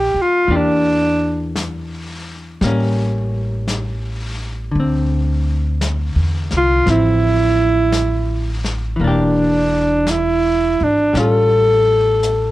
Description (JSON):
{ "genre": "jazz ballad", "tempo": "56 BPM", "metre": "4/4", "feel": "swing 69% on 8ths", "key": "D minor", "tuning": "A4 = 442 Hz", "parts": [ { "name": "breathy alto saxophone", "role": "melody", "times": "0.0-12.5 s", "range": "D4 to A4", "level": "-15 LUFS", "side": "right 1 dB", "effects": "none" }, { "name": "hollow-body jazz guitar", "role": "accompaniment", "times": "0.0-12.5 s", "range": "D3 to G4", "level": "-22 LUFS", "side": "left 2 dB", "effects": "none" }, { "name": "upright bass", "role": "bass", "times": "0.0-12.5 s", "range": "E1 to E2", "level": "-20 LUFS", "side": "equal", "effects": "none" }, { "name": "vintage brush drum kit", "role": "drums", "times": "0.5-12.5 s", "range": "brushed snare drum, hi-hat, snare drum", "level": "-29 LUFS", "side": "left 2 dB", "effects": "none" } ], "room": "little or no reverb", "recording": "worn, warbling old tape, cassette tape, warbly pitch drift", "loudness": "-14 LUFS", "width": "side -16 dB against mid", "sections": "0.0-12.5 A section", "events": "drum fill 12.2", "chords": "0.5 Em7b5; 2.6 A7b9; 4.8 Dm9; 9.0 Em7b5; 11.1 A7b13" }